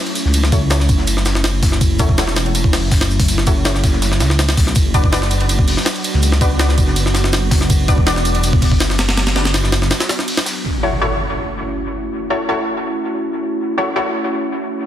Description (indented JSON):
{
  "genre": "drum and bass, jungle",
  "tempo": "163 BPM",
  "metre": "4/4",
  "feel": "straight",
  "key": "F# minor",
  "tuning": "A4 = 445 Hz",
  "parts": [
    { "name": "warbly tape-like pad", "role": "sustained chords", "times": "0.0-14.9 s", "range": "F#3 to F#4", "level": "-23 LUFS", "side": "equal", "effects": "chorus, built-in reverb" },
    { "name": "jungle sampler-style drum kit", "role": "drums", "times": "0.1-10.6 s", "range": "hi-hat, kick drum, ride cymbal, snare drum", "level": "-16 LUFS", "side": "equal", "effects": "none" },
    { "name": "crunchy breakbeat drum kit", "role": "drums", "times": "0.2-10.6 s", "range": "hi-hat, shaker, snare drum", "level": "-27 LUFS", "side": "left 4 dB", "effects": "high-pass filter on hats, high-pass filter on snare, high-pass filter on perc, high-pass filter on room" },
    { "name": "dark detuned saw bass", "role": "bass", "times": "0.3-9.9 s", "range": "E1 to C#2", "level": "-17 LUFS", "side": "equal", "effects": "none" },
    { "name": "orchestra-hit-like synth stab", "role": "stabs", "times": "0.5-14.0 s", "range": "D4 to D5", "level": "-23 LUFS", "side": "left 1 dB", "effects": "built-in reverb, dub echo" },
    { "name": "impact", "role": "sound effects", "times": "10.6-12.1 s", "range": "none", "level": "-24 LUFS", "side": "equal", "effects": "none" }
  ],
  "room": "light reverb, small room ambience",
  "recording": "dense, heavily limited modern master",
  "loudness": "-14 LUFS",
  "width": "side -11 dB against mid",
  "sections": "0.0-10.6 A section; 10.6-14.9 B section",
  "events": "break 9.9-10.6; impact 10.6-12.1",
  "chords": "0.0 F#m7; 4.8 Bm/F#; 10.6 F#m7",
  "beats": "| 0.34 0.71 1.07 1.44 | 1.81 2.18 2.55 2.92 | 3.28 3.65 4.02 4.39 | 4.76 5.12 5.49 5.86 | 6.23 6.60 6.96 7.33 | 7.70 8.07 8.44 8.80 | 9.17 9.54 9.91 10.28 | 10.65 11.01 11.38 11.75 | 12.12 12.49 12.86 13.22 | 13.59 13.96 14.33 14.70"
}